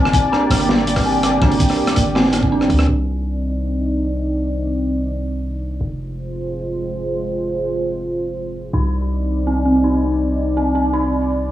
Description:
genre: half-time drum and bass.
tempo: 164 BPM.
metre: 4/4.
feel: half-time.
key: C minor.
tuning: A4 = 440 Hz.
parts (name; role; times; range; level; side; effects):
dark analog pad; sustained chords; 0.0-11.5 s; Ab3 to D5; -22 LUFS; equal; chorus, sidechain pumping.
dark detuned synth bell; arpeggios; 0.0-2.9, 8.7-11.5 s; C4 to Eb4; -19 LUFS; right 1 dB; chorus, phaser, tape echo.
long sustained 808-style bass; bass; 0.0-11.5 s; F1 to D2; -22 LUFS; equal; none.
crunchy breakbeat drum kit; drums; 0.1-2.9 s; hi-hat, rim click, snare drum; -21 LUFS; equal; low-pass filter on hats, low-pass filter on snare, low-pass filter on room.
electronic kick drum; drums; 0.1-2.8 s; none; -18 LUFS; equal; none.
room: moderate echo chamber reverb, RT60 1.8 s, studio reverb.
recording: dry, gritty hardware recording, cassette tape, low-pass filter, small room ambience.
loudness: -16 LUFS.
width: side -13 dB against mid.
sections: 0.0-2.9 A section; 2.9-11.5 B section.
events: drop 0.0-2.9; filter sweep 2.9-11.5.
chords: 0.0 Gm; 2.9 Cmadd9; 5.8 Fm; 8.7 Cmadd9.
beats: 0.32 0.69 1.05 | 1.42 1.79 2.15 2.52 | 2.88 3.25 3.62 3.98 | 4.35 4.71 5.08 5.45 | 5.81 6.18 6.54 6.91 | 7.27 7.64 8.01 8.37 | 8.74 9.10 9.47 9.84 | 10.20 10.57 10.93 11.30.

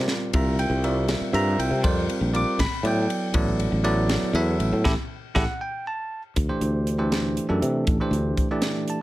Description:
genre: electric jazz fusion.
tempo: 80 BPM (dotted quarters).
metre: 6/8.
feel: straight.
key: unclear.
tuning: A4 = 441 Hz.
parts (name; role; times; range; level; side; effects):
bell-like tine electric piano; accompaniment; 0.0-9.0 s; E3 to D6; -25 LUFS; right 1 dB; none.
sustaining fretless electric bass; bass; 0.0-8.3 s; A1 to C3; -24 LUFS; equal; none.
crisp fusion drum kit; drums; 0.1-9.0 s; hi-hat, kick drum, ride cymbal, snare drum; -27 LUFS; equal; none.
room: light reverb.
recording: none.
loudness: -21 LUFS.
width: side -16 dB against mid.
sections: 0.0-6.4 A section; 6.4-9.0 B section.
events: drum fill 0.0-0.3, 4.9-6.4; band accent 4.9-6.4; tine electric piano fill 8.6-9.0.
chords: 0.0 C9sus4; 2.6 A9sus4; 6.4 D9sus4.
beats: | 0.34 1.09 | 1.84 2.60 | 3.35 4.10 | 4.85 5.61 | 6.36 7.11 | 7.87 8.62.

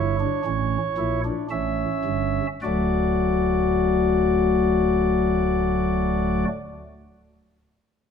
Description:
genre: classical, baroque-style 3-part fugue for pipe organ.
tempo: 52-60 BPM.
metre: 3/4.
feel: straight.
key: unclear.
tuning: A4 = 440 Hz.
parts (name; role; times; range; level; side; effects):
pipe organ, flutes; solo; 0.0-6.5 s; D1 to E5; -20 LUFS; left 1 dB; none.
room: wet recital hall reverb, RT60 1.6 s.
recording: none.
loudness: -20 LUFS.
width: side -7 dB against mid.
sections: 0.0-2.6 A section; 2.6-6.1 B section.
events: slowing down 0.0-2.6.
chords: 0.0 A7; 2.6 D.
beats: 0.45 1.50 | 2.62 3.78 4.94.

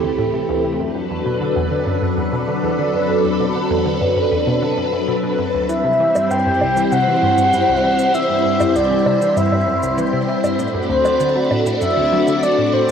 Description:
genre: ambient, sequencer-driven space music.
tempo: 98 BPM.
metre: 4/4.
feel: straight.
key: C lydian.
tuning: A4 = 441 Hz.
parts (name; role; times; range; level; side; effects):
phased string machine; sustained chords; 0.0-12.9 s; E3 to D5; -18 LUFS; equal; ensemble chorus, phaser, cassette tape.
analog pluck; riff; 0.0-12.9 s; C2 to F#3; -24 LUFS; equal; chorus, phaser, cassette tape, ping-pong delay.
wind-like tuned noise texture; texture; 0.0-12.9 s; C4 to B5; -27 LUFS; left 1 dB; built-in reverb, cassette tape, plate reverb.
breathy flute-like synth lead; melody; 5.7-12.9 s; C5 to G5; -18 LUFS; equal; chorus, plate reverb, ping-pong delay.
shaker and woodblock; percussion; 5.7-12.9 s; none; -25 LUFS; right 1 dB; ping-pong delay.
room: wet booth ambience, RT60 0.2 s.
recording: home recording on cassette.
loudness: -15 LUFS.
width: side -7 dB against mid.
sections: 0.0-12.9 A section.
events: fade-in on synth texture 0.0-12.9.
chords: 0.0 Am; 0.8 Bm7; 5.7 C; 10.6 D.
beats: 0.18 | 0.80 1.41 2.02 2.63 | 3.25 3.86 4.47 5.08 | 5.69 6.31 6.92 7.53 | 8.14 8.76 9.37 9.98 | 10.59 11.20 11.82 12.43.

